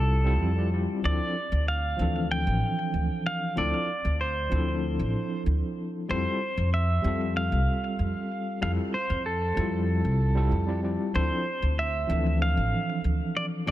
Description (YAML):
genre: sunset chillout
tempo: 95 BPM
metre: 4/4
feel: straight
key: D minor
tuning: A4 = 442 Hz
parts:
  - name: pedal steel guitar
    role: melody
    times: 0.0-13.7 s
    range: A4 to G5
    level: -30 LUFS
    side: right 1 dB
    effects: digital delay
  - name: overdriven tine electric piano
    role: accompaniment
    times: 0.0-13.7 s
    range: E3 to D5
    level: -30 LUFS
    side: moving between left 4 dB and right 3 dB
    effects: fast tremolo, auto-pan
  - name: upright bass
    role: bass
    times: 0.0-13.7 s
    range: A1 to F2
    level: -26 LUFS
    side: equal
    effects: none
room: light reverb, small room ambience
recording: none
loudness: -24 LUFS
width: side -14 dB against mid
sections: 0.0-13.7 A section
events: none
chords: 0.0 Fmaj7; 1.0 Dm7; 6.1 Fmaj7; 11.1 Dm7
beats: 0.41 | 1.04 1.68 2.31 2.94 | 3.57 4.20 4.83 5.46 | 6.10 6.73 7.36 7.99 | 8.62 9.26 9.89 10.52 | 11.15 11.78 12.41 13.04 | 13.68